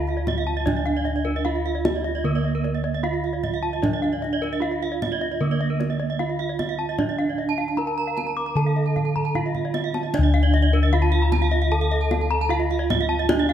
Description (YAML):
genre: Balinese gamelan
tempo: 76 BPM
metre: 4/4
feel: straight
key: D pelog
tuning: A4 = 440 Hz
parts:
  - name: gamelan-type bronze metallophone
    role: melody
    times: 0.0-13.5 s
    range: Bb3 to Bb4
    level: -27 LUFS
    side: right 6 dB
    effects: none
  - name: gamelan-type bronze metallophone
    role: arpeggios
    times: 0.0-13.5 s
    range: Bb4 to D6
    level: -29 LUFS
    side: left 5 dB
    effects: none
  - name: gamelan-type bossed gongs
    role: bass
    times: 0.0-13.5 s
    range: D2 to Eb4+35c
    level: -24 LUFS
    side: left 1 dB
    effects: none
  - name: gamelan-type bronze metallophone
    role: arpeggios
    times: 0.1-13.5 s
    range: Bb4 to Bb5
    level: -29 LUFS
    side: right 7 dB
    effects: none
  - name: kendang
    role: percussion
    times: 0.1-13.5 s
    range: none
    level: -29 LUFS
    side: left 2 dB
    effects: none
room: light reverb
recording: none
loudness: -20 LUFS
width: side -10 dB against mid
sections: 0.0-13.5 A section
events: drum fill 9.2-10.1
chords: none